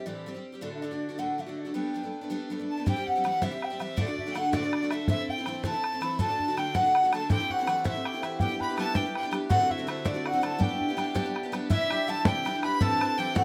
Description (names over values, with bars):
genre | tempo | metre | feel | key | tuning
celtic folk, Celtic jig | 109 BPM (dotted quarters) | 6/8 | straight | G major | A4 = 440 Hz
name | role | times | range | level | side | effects
baroque flute | melody | 0.0-13.4 s | D5 to B5 | -32 LUFS | equal | none
picked twelve-string acoustic guitar | accompaniment | 0.0-13.4 s | D2 to G4 | -34 LUFS | equal | none
bright fiddle | second line | 2.7-13.4 s | D5 to B5 | -37 LUFS | equal | none
bodhran | percussion | 2.9-13.4 s | none | -31 LUFS | equal | none
cimbalom | second line | 7.3-13.4 s | D4 to B4 | -37 LUFS | equal | none
room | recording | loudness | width
moderate studio reverb, RT60 0.6 s | none | -28 LUFS | mono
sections
0.0-2.9 A section; 2.9-11.7 B section; 11.7-13.4 C section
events
none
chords
0.0 Am7; 0.6 D; 1.7 Gadd9; 2.9 C; 4.0 D; 5.1 Am/C; 6.2 D; 7.3 Am; 8.4 G; 9.5 D7; 10.6 G; 11.7 Cadd9; 12.8 Am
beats
0.06 | 0.62 1.19 | 1.75 2.31 | 2.86 3.42 | 3.98 4.53 | 5.09 5.64 | 6.19 6.75 | 7.30 7.85 | 8.40 8.96 | 9.51 10.06 | 10.61 11.16 | 11.71 12.26 | 12.81 13.36